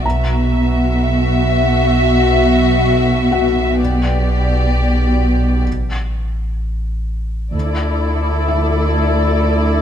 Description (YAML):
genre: cinematic, suspense film score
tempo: 64 BPM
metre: 4/4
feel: straight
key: unclear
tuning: A4 = 441 Hz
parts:
  - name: muted symphonic violin section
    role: second line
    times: 0.0-9.8 s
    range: F#4 to E5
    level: -19 LUFS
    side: left 2 dB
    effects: none
  - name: muted symphonic cello section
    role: bass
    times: 0.0-9.8 s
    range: D2 to B2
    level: -19 LUFS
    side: right 1 dB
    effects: none
  - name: muted symphonic double bass section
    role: bass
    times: 0.0-8.4 s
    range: B1 to D2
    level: -21 LUFS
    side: right 2 dB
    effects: none
  - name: warm sub bass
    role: drone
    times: 0.0-9.8 s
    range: A1 to D2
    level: -19 LUFS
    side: equal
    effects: none
  - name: felt-muted upright piano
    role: texture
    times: 0.1-9.8 s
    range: F#4 to A#5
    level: -25 LUFS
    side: left 4 dB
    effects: none
  - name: muted symphonic violin section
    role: melody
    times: 7.5-9.8 s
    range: D5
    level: -24 LUFS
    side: left 6 dB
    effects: none
  - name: muted symphonic viola section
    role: accompaniment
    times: 7.5-9.8 s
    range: E4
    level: -21 LUFS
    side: left 1 dB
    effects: none
room: light reverb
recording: close, detailed microphones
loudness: -13 LUFS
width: side -9 dB against mid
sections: 0.0-7.5 A section; 7.5-9.8 B section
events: break 5.7-7.5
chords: 0.0 Esus2/B; 5.7 N.C.; 7.5 Dsus2